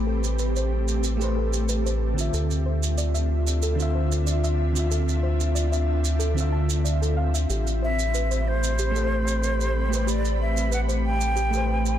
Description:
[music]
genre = sunset chillout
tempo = 93 BPM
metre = 4/4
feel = straight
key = A minor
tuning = A4 = 443 Hz
[part]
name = mellow FM electric piano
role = accompaniment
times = 0.0-12.0 s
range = D3 to E5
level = -30 LUFS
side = right 1 dB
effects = chorus, auto-pan, digital delay
[part]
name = ethereal airy pad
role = sustained chords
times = 0.0-12.0 s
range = A3 to B5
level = -31 LUFS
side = left 1 dB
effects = ensemble chorus, built-in reverb, tremolo
[part]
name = round analog bass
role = bass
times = 0.0-12.0 s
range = A1 to D2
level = -24 LUFS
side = equal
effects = none
[part]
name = soft round pluck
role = arpeggios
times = 0.1-11.8 s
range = G4 to A5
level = -35 LUFS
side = right 2 dB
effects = chorus, digital delay
[part]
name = shaker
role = drums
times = 0.2-12.0 s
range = none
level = -33 LUFS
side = right 6 dB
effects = soft clipping on snare
[part]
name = breathy concert flute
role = melody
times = 7.8-12.0 s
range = C5 to G5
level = -28 LUFS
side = right 1 dB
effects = digital delay
[sound]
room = light reverb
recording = dense, heavily limited modern master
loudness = -22 LUFS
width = side -11 dB against mid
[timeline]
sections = 0.0-12.0 A section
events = none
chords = 0.0 Am9; 2.3 Dm9; 7.5 Am9

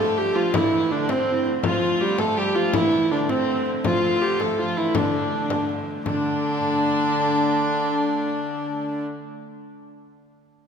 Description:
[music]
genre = medieval dance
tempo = 109 BPM (dotted quarters)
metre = 6/8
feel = straight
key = D minor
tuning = A4 = 439 Hz
[part]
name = dark hurdy-gurdy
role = melody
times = 0.0-9.0 s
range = C4 to A4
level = -23 LUFS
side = equal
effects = none
[part]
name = dark clarinet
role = second line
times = 0.0-9.0 s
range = D3 to E4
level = -29 LUFS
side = right 4 dB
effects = none
[part]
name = warm fiddle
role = second line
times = 0.0-9.0 s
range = C4 to A4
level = -27 LUFS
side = left 2 dB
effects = none
[part]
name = clear hurdy-gurdy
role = drone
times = 0.0-9.1 s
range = D3 to A3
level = -32 LUFS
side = left 1 dB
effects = none
[part]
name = frame drum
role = percussion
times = 0.4-6.2 s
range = none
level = -29 LUFS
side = left 4 dB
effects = none
[sound]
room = wet church reverb, RT60 3.2 s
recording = minimal, uncompressed stereo recording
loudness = -20 LUFS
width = side -6 dB against mid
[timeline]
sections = 0.0-6.1 A section; 6.1-8.3 B section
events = none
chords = none

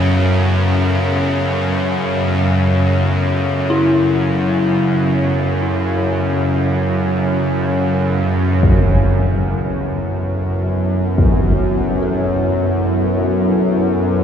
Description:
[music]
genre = dark ambient drone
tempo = free time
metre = none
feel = none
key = F# minor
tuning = A4 = 440 Hz
[part]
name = deep dark ambient pad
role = sustained chords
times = 0.0-14.2 s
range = F#3 to C#5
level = -23 LUFS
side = left 1 dB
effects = chorus, built-in reverb
[part]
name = dark detuned synth bell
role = arpeggios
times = 0.0-14.2 s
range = C#4 to A4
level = -24 LUFS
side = left 3 dB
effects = chorus, phaser, tape echo
[part]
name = bowed-like drone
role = drone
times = 0.0-14.2 s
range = F#2 to C#3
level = -16 LUFS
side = equal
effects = built-in reverb
[part]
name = bronze singing bowl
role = texture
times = 0.0-14.2 s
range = C#5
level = -33 LUFS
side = left 3 dB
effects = none
[part]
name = impact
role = percussion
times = 8.6-11.4 s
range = none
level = -19 LUFS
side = equal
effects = low-pass filter on sfx
[sound]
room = wet cathedral reverb, RT60 5.8 s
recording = none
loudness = -14 LUFS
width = side -8 dB against mid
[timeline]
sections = 0.0-8.6 A section; 8.6-14.2 B section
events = none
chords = 0.0 F#m

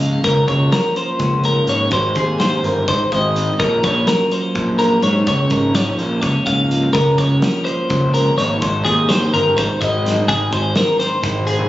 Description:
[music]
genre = math rock and midwest emo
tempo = 251 BPM (eighths)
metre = 7/8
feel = straight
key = Ab major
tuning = A4 = 440 Hz
[part]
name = twelve-string electric guitar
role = accompaniment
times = 0.0-11.7 s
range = Ab2 to Eb4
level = -23 LUFS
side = right 2 dB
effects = wide subtle chorus
[part]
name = twelve-string electric guitar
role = arpeggios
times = 0.0-11.7 s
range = Ab4 to F5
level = -18 LUFS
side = left 1 dB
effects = spring reverb
[part]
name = fuzz picked electric bass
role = bass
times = 0.0-11.6 s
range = G1 to Ab2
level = -18 LUFS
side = equal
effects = overdrive
[part]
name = loose indie drum kit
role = drums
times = 0.0-11.7 s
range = hi-hat, kick drum, snare drum, toms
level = -24 LUFS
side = equal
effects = none
[sound]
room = light reverb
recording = recorded on a phone in the room, studio reverb, nothing above 7.6 kHz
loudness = -14 LUFS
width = side -14 dB against mid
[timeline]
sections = 0.0-11.7 A section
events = none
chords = 0.0 Db6; 1.9 Ab; 3.6 Gb/Bb; 5.3 Db6; 8.6 Ab

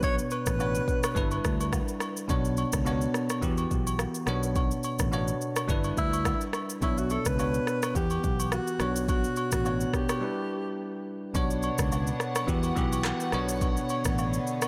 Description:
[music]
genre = afrobeats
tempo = 106 BPM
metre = 4/4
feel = swing 55% on 16ths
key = B minor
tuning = A4 = 440 Hz
[part]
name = breathy alto saxophone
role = melody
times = 0.0-1.4, 6.0-11.1 s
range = E4 to C#5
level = -35 LUFS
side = equal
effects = tape echo
[part]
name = bell-like tine electric piano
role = accompaniment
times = 0.0-14.7 s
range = B2 to F#5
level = -34 LUFS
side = equal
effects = none
[part]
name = fingered electric bass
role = bass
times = 0.0-14.4 s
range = G1 to E2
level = -33 LUFS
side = equal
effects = none
[part]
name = afro-pop drum kit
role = drums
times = 0.0-14.7 s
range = handclaps, kick drum, rim click, shaker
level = -33 LUFS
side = equal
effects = none
[part]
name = agogo bells and woodblock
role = percussion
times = 0.0-14.7 s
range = none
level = -40 LUFS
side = equal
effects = none
[part]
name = warm studio string section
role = sustained chords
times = 11.3-14.7 s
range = D3 to F#5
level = -37 LUFS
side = equal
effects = none
[sound]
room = moderate plate reverb, RT60 3.0 s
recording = dreamy mix soaked in reverb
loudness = -28 LUFS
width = mono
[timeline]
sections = 0.0-11.3 A section; 11.3-14.7 B section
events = break 10.2-11.3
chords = 0.0 Bmadd9; 1.2 G6; 2.3 Bmadd9; 3.4 Emadd9; 4.3 Bmadd9; 5.7 G6; 6.8 Bmadd9; 8.0 Emadd9; 8.8 Bmadd9; 10.2 G6; 11.3 Bmadd9; 12.5 Emadd9; 13.3 Bmadd9

